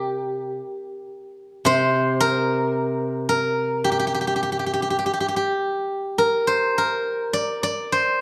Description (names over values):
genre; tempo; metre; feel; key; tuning
chinese traditional, Chinese solo plucked strings; 51-56 BPM; 2/4; rubato; unclear; A4 = 440 Hz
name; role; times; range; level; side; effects
steel-string zither; solo; 0.0-8.2 s; C3 to D5; -23 LUFS; equal; none
room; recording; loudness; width
moderate recital hall reverb, RT60 1.6 s; dark, warm production; -23 LUFS; mono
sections
0.0-8.2 A section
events
none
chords
none